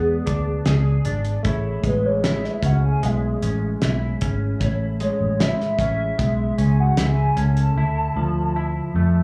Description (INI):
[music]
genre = indie pop, bedroom pop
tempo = 76 BPM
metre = 4/4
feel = straight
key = A major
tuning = A4 = 440 Hz
[part]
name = hollow clarinet-like synth lead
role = melody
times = 0.0-9.2 s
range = G#4 to A5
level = -28 LUFS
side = equal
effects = lush chorus, plate reverb, slapback echo, tape echo
[part]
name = semi-hollow electric guitar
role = accompaniment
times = 0.0-9.2 s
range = A2 to G#4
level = -30 LUFS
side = equal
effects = lush chorus, vibrato effect, plate reverb, slapback echo
[part]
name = vintage muted fingered electric bass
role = bass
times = 0.0-9.2 s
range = G#1 to F2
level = -23 LUFS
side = equal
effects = none
[part]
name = cloth-damped thuddy drum kit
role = drums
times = 0.3-7.8 s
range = hi-hat, kick drum, snare drum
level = -27 LUFS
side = equal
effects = slapback echo
[part]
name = barky tine electric piano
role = accompaniment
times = 1.4-4.6 s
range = A3 to C#5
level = -33 LUFS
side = equal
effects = cassette tape, plate reverb, slapback echo
[sound]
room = light reverb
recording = live gig heard through the venue's PA, club reverb, small room ambience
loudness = -21 LUFS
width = mono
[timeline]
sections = 0.0-9.2 A section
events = soft synth lead solo 0.0-9.2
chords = 0.0 E7; 1.5 Amaj7; 7.8 Dmadd9